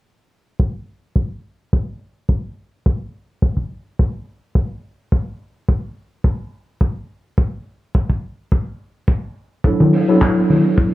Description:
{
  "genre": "nu-disco, nu disco",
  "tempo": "106 BPM",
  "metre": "4/4",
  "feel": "swing 53% on 16ths",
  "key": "unclear",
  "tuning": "A4 = 438 Hz",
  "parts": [
    { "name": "kick drum", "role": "drums", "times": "0.6-10.9 s", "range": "none", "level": "-17 LUFS", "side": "equal", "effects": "studio reverb" },
    { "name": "tine electric piano", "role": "accompaniment", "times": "9.6-10.9 s", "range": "F#3 to A4", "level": "-14 LUFS", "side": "equal", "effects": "medium stereo tremolo, analog delay" },
    { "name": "congas", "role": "percussion", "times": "9.8-10.6 s", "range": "none", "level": "-15 LUFS", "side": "right 1 dB", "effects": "none" },
    { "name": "damped 70s drum kit", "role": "drums", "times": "9.9-10.6 s", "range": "handclaps, hi-hat", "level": "-27 LUFS", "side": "equal", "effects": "studio reverb" }
  ],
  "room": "light reverb, small room ambience",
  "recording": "dry, gritty hardware recording, transformer saturation, low-pass filter",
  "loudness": "-17 LUFS",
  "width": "side -16 dB against mid",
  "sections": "0.6-10.9 A section",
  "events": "filter sweep 0.6-10.9",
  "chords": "0.6 N.C.; 9.7 D6",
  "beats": "| 0.59 1.16 1.73 2.29 | 2.86 3.42 3.99 4.56 | 5.12 5.69 6.25 6.82 | 7.39 7.95 8.52 9.08 | 9.65 10.22 10.78"
}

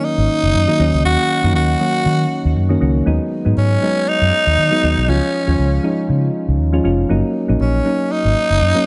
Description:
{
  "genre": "1980s-style pop",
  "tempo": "119 BPM",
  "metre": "4/4",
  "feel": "swing 55% on 16ths",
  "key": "F# major",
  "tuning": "A4 = 440 Hz",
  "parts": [
    { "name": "growling tenor saxophone", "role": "melody", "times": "0.0-8.9 s", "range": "C#4 to F#4", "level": "-20 LUFS", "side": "equal", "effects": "none" },
    { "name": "soft electric-piano-like synth keys", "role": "accompaniment", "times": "0.0-8.9 s", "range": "D#3 to E#4", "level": "-21 LUFS", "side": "equal", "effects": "chorus" },
    { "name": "vintage muted fingered electric bass", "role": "bass", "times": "0.2-8.7 s", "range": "E#1 to D#3", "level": "-19 LUFS", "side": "equal", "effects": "none" }
  ],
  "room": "light reverb, small room ambience",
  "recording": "nothing above 10.7 kHz",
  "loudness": "-16 LUFS",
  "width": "mono",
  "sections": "0.0-8.9 A section",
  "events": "none",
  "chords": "0.0 F#6; 0.8 D#m7; 3.1 G#m7/D#; 5.1 C#; 7.1 F#6",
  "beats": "0.04 0.54 | 1.05 1.55 2.06 2.56 | 3.06 3.57 4.07 4.58 | 5.08 5.59 6.09 6.59 | 7.10 7.60 8.11 8.61"
}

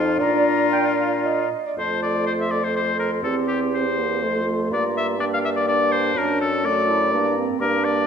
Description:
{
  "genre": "quick classical-period movement for wind quintet",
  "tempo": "113-126 BPM",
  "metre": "3/4",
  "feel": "rubato",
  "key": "F major",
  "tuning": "A4 = 440 Hz",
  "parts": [
    { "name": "clear oboe", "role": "second line", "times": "0.0-8.1 s", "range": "F4 to F5", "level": "-23 LUFS", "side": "left 3 dB", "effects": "none" },
    { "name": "warm French horn", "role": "accompaniment", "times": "0.0-8.1 s", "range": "A3 to Eb4", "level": "-26 LUFS", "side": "equal", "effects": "none" },
    { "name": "warm bassoon", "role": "bass", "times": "0.0-8.1 s", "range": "E2 to Bb2", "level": "-25 LUFS", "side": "right 2 dB", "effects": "none" },
    { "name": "concert flute", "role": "melody", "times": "0.2-8.1 s", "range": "G5 to D6", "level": "-30 LUFS", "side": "left 10 dB", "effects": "none" },
    { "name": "mellow clarinet", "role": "accompaniment", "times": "0.2-8.1 s", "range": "C4 to G5", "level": "-27 LUFS", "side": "right 7 dB", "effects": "none" }
  ],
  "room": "wet recital hall reverb, RT60 1.6 s",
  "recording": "dark, warm production",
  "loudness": "-19 LUFS",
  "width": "side -7 dB against mid",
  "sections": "0.0-1.8 A section; 1.8-8.1 B section",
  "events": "none",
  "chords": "0.2 Bb; 1.8 F; 3.2 C7/E; 4.2 F; 4.7 Gm; 6.2 D/F#; 7.1 Gm",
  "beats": "| 0.19 0.72 1.25 | 1.77 2.27 2.75 | 3.23 3.73 4.22 | 4.71 5.19 5.67 | 6.15 6.65 7.13 | 7.60"
}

